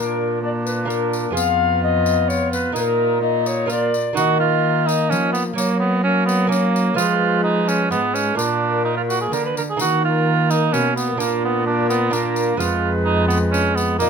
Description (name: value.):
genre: classical, renaissance-style consort dance.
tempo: 128 BPM.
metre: 3/4.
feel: straight.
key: Eb minor.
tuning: A4 = 442 Hz.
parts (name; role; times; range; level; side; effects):
mellow alto recorder; melody; 0.0-14.1 s; Bb4 to F5; -24 LUFS; left 6 dB; none.
mellow cor anglais; second line; 0.0-14.1 s; Bb3 to Cb5; -21 LUFS; right 6 dB; none.
clear trombone; accompaniment; 0.0-14.1 s; Ab3 to Cb4; -26 LUFS; left 4 dB; none.
lute; accompaniment; 0.0-14.1 s; F2 to Bb4; -27 LUFS; right 7 dB; none.
rich cello; bass; 0.0-14.1 s; F2 to Gb3; -22 LUFS; right 1 dB; none.
tambourine; percussion; 0.7-14.1 s; none; -31 LUFS; left 6 dB; none.
room: light reverb.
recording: close, detailed microphones.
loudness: -17 LUFS.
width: side -6 dB against mid.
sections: 0.0-4.2 A section; 4.2-14.1 A section.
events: none.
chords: 0.0 Bb; 1.3 Fdim; 2.7 Bbsus4; 3.7 Bb; 4.2 Eb5; 5.6 Gb; 7.0 Fdim; 8.4 Bb; 9.8 Eb5; 11.2 Bb; 12.6 Fdim.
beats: 0.42 0.88 | 1.35 1.81 2.28 | 2.75 3.21 3.69 | 4.17 4.64 5.11 | 5.58 6.04 6.51 | 6.97 7.44 7.91 | 8.38 8.86 9.33 | 9.80 10.27 10.74 | 11.21 11.67 12.14 | 12.60 13.07 13.54 | 14.00.